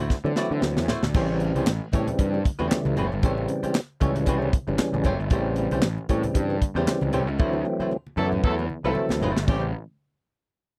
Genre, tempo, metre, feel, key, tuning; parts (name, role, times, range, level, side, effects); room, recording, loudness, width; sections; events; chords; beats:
funk; 115 BPM; 4/4; swing 56% on 16ths; A mixolydian; A4 = 440 Hz
archtop guitar, miked and amplified; accompaniment; 0.0-9.7 s; A3 to D5; -33 LUFS; equal; wah
fuzz picked electric bass; bass; 0.0-9.7 s; F#1 to D3; -30 LUFS; equal; overdrive
tight funk drum kit; drums; 0.1-9.6 s; crash cymbal, handclaps, hi-hat, kick drum, snare drum; -26 LUFS; equal
congas; percussion; 0.1-9.7 s; -38 LUFS; equal
tonewheel organ; stabs; 0.2-9.7 s; C#3 to C#4; -29 LUFS; equal; overdrive, fast rotary speaker
warm horn section; second line; 8.2-9.7 s; E3 to A4; -32 LUFS; equal
little or no reverb; dry, close 1970s-style studio recording; -25 LUFS; mono
0.0-1.1 A section; 1.1-9.5 B section; 9.5-10.8 C section
drum fill 0.1-1.1, 7.4-9.5; band accent 7.4-9.5
0.0 D9; 1.1 A7#9; 7.4 D9; 9.5 A7#9
0.10 0.62 | 1.14 1.67 2.19 2.71 | 3.23 3.75 4.27 4.79 | 5.32 5.84 6.36 6.88 | 7.40 7.92 8.44 8.96 | 9.48